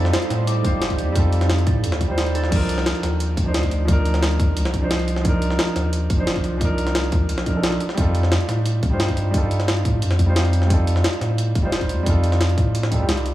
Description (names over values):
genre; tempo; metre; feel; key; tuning
liquid drum and bass; 176 BPM; 4/4; straight; C dorian; A4 = 440 Hz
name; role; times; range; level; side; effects
warm grand piano; accompaniment; 0.0-13.3 s; F3 to C5; -25 LUFS; right 2 dB; tape echo
ethereal airy pad; sustained chords; 0.0-2.5 s; G3 to A4; -33 LUFS; right 1 dB; ensemble chorus, built-in reverb, sidechain pumping
Celtic harp; arpeggios; 0.0-4.5 s; G4 to D5; -31 LUFS; equal; dub echo
warm sub bass; bass; 0.0-13.3 s; F1 to A2; -21 LUFS; equal; none
jungle sampler-style drum kit; drums; 0.1-13.3 s; crash cymbal, hi-hat, snare drum; -25 LUFS; left 1 dB; none
electronic kick drum; drums; 0.6-13.0 s; none; -22 LUFS; equal; none
room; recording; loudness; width
digital ambience; small room ambience; -18 LUFS; side -14 dB against mid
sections
0.0-2.5 A section; 2.5-13.3 A section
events
drop 0.0-2.5, 2.5-13.3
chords
0.0 F9; 2.5 Cm11; 7.8 F9